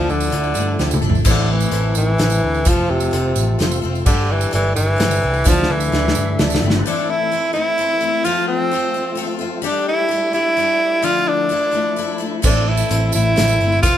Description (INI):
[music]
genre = folk rock and heartland rock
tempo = 129 BPM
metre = 3/4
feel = straight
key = A minor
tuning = A4 = 440 Hz
[part]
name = clear tenor saxophone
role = melody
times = 0.0-14.0 s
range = C3 to F4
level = -18 LUFS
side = right 1 dB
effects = none
[part]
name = dark baby grand piano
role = accompaniment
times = 0.0-6.8, 12.4-14.0 s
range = C4 to A5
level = -30 LUFS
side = right 6 dB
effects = none
[part]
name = picked twelve-string acoustic guitar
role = accompaniment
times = 0.0-14.0 s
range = A2 to A4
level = -24 LUFS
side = left 9 dB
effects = none
[part]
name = tonewheel organ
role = sustained chords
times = 0.0-14.0 s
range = D3 to E5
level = -30 LUFS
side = right 1 dB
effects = slow rotary speaker
[part]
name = picked electric bass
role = bass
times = 0.0-6.8, 12.4-14.0 s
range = F1 to G2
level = -19 LUFS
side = equal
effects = none
[part]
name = tambourine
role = percussion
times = 0.1-6.6, 12.4-13.9 s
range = none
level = -29 LUFS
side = right 9 dB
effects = none
[part]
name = natural country drum kit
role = drums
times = 0.3-6.8, 12.4-13.9 s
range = crash cymbal, hi-hat, kick drum, snare drum, toms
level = -19 LUFS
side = equal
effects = none
[sound]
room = light reverb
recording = band playing live in one room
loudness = -15 LUFS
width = side -11 dB against mid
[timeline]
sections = 0.0-6.9 A section; 6.9-14.0 A section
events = grand piano fill 0.6-1.3; drum fill 0.8-1.3, 5.5-6.9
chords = 0.0 Dmadd9; 1.3 Am; 2.7 F; 4.1 Gsus2; 5.5 Dmadd9; 6.9 Am; 8.3 F; 9.6 Gsus2; 11.0 Dmadd9; 12.4 Am